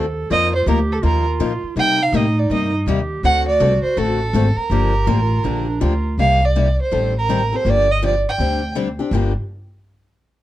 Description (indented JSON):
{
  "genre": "acoustic string swing (jazz manouche)",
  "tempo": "163 BPM",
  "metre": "4/4",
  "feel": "swing 62% on 8ths",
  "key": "G minor",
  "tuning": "A4 = 439 Hz",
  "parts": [
    { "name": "warm clarinet", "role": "second line", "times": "0.0-6.2 s", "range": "D4 to A4", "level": "-25 LUFS", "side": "right 3 dB", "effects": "none" },
    { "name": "picked steel-string acoustic guitar", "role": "accompaniment", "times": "0.0-9.3 s", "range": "G2 to Bb4", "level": "-23 LUFS", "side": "left 6 dB", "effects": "none" },
    { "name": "upright bass", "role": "bass", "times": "0.0-9.3 s", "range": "G1 to C3", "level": "-19 LUFS", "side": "equal", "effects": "none" },
    { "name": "warm violin", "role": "melody", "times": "0.3-8.7 s", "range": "A4 to G5", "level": "-19 LUFS", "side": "right 2 dB", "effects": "none" }
  ],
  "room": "light reverb",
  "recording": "dark, warm production",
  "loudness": "-15 LUFS",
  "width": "side -14 dB against mid",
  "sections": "0.0-6.2 A section; 6.2-9.1 B section; 9.1-10.4 C section",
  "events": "none",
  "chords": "0.3 F7sus4; 1.8 Cm7; 3.2 D7; 4.7 Gm7; 6.2 Cm9; 6.9 Am7b5; 7.7 Gm7; 8.4 D7sus4; 9.1 Gm7"
}